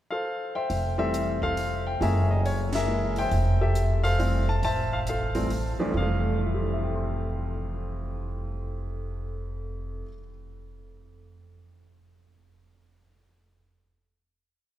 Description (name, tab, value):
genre	jazz piano trio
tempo	138 BPM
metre	3/4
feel	swing 65% on 8ths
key	F major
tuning	A4 = 440 Hz
part	warm baby grand piano	melody	0.1-10.3 s	F2 to C6	-28 LUFS	left 1 dB	none
part	upright bass	bass	0.7-10.0 s	F1 to A1	-27 LUFS	equal	none
part	compact cocktail drum kit	drums	0.7-5.6 s	hi-hat, kick drum, ride cymbal, snare drum	-40 LUFS	right 1 dB	none
room	wet cathedral reverb, RT60 6.2 s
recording	recorded in a church or concert hall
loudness	-25 LUFS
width	side -12 dB against mid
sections	0.0-0.7 pickup bar; 0.7-5.9 A section; 5.9-8.6 final chord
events	band accent 2.7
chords	0.0 Fmaj7; 0.7 Fmaj9; 2.0 Gb9; 3.3 Fmaj9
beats	0.26 | 0.70 1.14 1.57 | 2.01 2.44 2.88 | 3.32 3.75 4.19 | 4.63 5.07 5.50 | 5.94 6.37 6.81 | 7.25 7.68 8.12